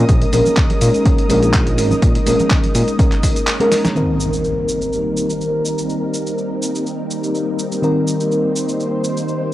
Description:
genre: deep house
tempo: 124 BPM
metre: 4/4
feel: swing 53% on 16ths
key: C phrygian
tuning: A4 = 440 Hz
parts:
  - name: soft string machine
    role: sustained chords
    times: 0.0-9.5 s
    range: G3 to C5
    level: -21 LUFS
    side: equal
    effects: ensemble chorus, vintage 12-bit sampler grit, sidechain pumping
  - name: mellow FM electric piano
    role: stabs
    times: 0.0-9.5 s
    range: Eb3 to Bb4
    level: -20 LUFS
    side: equal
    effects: chorus, sidechain pumping, low-pass filter, analog delay
  - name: smooth synth bass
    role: bass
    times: 0.0-2.8 s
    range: Ab1 to Bb2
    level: -17 LUFS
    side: equal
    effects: sidechain pumping
  - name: analog string pad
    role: texture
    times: 0.0-4.0 s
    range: Eb5 to Eb6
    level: -31 LUFS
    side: right 1 dB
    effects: ensemble chorus, sidechain pumping
  - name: dusty soul sampler-style drum kit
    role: drums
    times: 0.1-9.4 s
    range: handclaps, hi-hat, shaker, snare drum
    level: -24 LUFS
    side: equal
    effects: small room ambience
  - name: electronic kick drum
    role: drums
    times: 0.1-3.3 s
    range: none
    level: -15 LUFS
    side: equal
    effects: overdrive, small room ambience
  - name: congas and bongos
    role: percussion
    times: 0.3-3.9 s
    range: none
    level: -26 LUFS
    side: right 2 dB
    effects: none
  - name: impact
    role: sound effects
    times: 4.0-5.9 s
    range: none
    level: -27 LUFS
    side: equal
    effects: none
room: little or no reverb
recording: dry, gritty hardware recording, cassette tape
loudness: -14 LUFS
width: side -14 dB against mid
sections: 0.0-4.0 A section; 4.0-9.5 B section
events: filter sweep on FM electric piano 0.0-4.0; band accent 3.5; drum fill 3.7; impact 4.0-5.9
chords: 0.0 Bbm7; 4.0 Cm7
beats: | 0.09 0.57 1.06 1.54 | 2.02 2.51 2.99 3.48 | 3.96 4.44 4.93 5.41 | 5.89 6.38 6.86 7.35 | 7.83 8.31 8.80 9.28

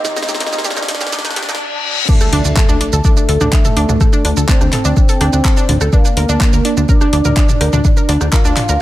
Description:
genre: melodic techno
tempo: 125 BPM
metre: 4/4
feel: straight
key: D phrygian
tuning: A4 = 440 Hz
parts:
  - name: expressive portamento lead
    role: melody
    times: 0.0-8.8 s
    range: A3 to F4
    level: -20 LUFS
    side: right 1 dB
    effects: lush chorus, sidechain pumping, digital delay
  - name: sweeping resonant pad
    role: sustained chords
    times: 0.0-1.6 s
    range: Eb3 to G4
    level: -34 LUFS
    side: left 2 dB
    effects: none
  - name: analog pluck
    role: arpeggios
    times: 0.0-8.8 s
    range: D4 to Bb4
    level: -21 LUFS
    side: equal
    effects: chorus, sidechain pumping, dub echo
  - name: plucky analog bass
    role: bass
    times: 0.0-8.8 s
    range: D2 to Eb2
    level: -16 LUFS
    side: equal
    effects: sidechain pumping, high-pass filter
  - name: deep house drum kit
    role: drums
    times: 0.0-8.8 s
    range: crash cymbal, handclaps, hi-hat, rim click, shaker, snare drum, toms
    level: -20 LUFS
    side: right 1 dB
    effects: none
  - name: riser, reverse cymbal and impact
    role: sound effects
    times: 0.0-4.0 s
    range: none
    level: -22 LUFS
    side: left 2 dB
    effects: none
  - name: deep dark ambient pad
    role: texture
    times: 0.0-1.6 s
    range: G4 to F5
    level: -38 LUFS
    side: right 2 dB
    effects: none
  - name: electronic kick drum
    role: drums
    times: 2.1-8.4 s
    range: none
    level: -12 LUFS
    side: equal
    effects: none
room: digital ambience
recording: high-pass filter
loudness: -11 LUFS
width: side -15 dB against mid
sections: 0.0-2.1 A section; 2.1-8.8 B section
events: build-up 0.0-2.1; drum fill 0.0-1.6; riser 0.0-1.6; filter sweep on analog synth lead 0.0-2.1; filter sweep 0.0-2.1; reverse cymbal 1.1-2.1; drop 2.1-8.8; impact 2.1-4.0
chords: 0.0 Ebadd9; 2.1 D5; 5.9 Bb/D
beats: | 0.17 0.65 1.13 1.61 | 2.09 2.57 3.05 3.53 | 4.01 4.49 4.97 5.45 | 5.93 6.41 6.89 7.37 | 7.85 8.33 8.81

